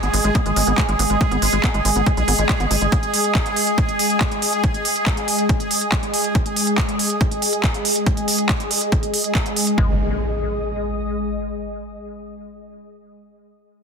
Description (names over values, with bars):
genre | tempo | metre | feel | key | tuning
psychedelic trance | 140 BPM | 4/4 | straight | unclear | A4 = 439 Hz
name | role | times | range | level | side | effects
bubbling stepped-filter texture | sustained chords | 0.0-9.8 s | G#4 | -24 LUFS | right 2 dB | chorus, built-in reverb, sidechain pumping
liquid acid bass | riff | 0.0-2.9, 9.8-10.0 s | G#3 to B3 | -28 LUFS | left 1 dB | chorus, auto-pan, sidechain pumping, dub echo
tight sequencer bass | bass | 0.0-2.9, 9.8-10.0 s | G#1 to B1 | -22 LUFS | equal | none
techno drum kit | drums | 0.0-9.8 s | handclaps, hi-hat | -22 LUFS | right 2 dB | none
ethereal airy pad | texture | 0.0-11.5 s | G#3 to D#6 | -24 LUFS | left 1 dB | ensemble chorus, built-in reverb, sidechain pumping
electronic kick drum | drums | 0.3-9.9 s | none | -20 LUFS | equal | none
impact | sound effects | 9.9-11.5 s | none | -28 LUFS | equal | none
room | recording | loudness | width
light reverb, digital ambience | dense, heavily limited modern master | -17 LUFS | side -6 dB against mid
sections
0.0-9.8 A section; 9.8-11.5 B section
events
none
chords
0.0 G#5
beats
0.35 0.78 | 1.21 1.64 2.06 2.49 | 2.92 3.35 3.78 4.21 | 4.64 5.07 5.49 5.92 | 6.35 6.78 7.21 7.64 | 8.06 8.49 8.92 9.35 | 9.78 10.21 10.64 11.06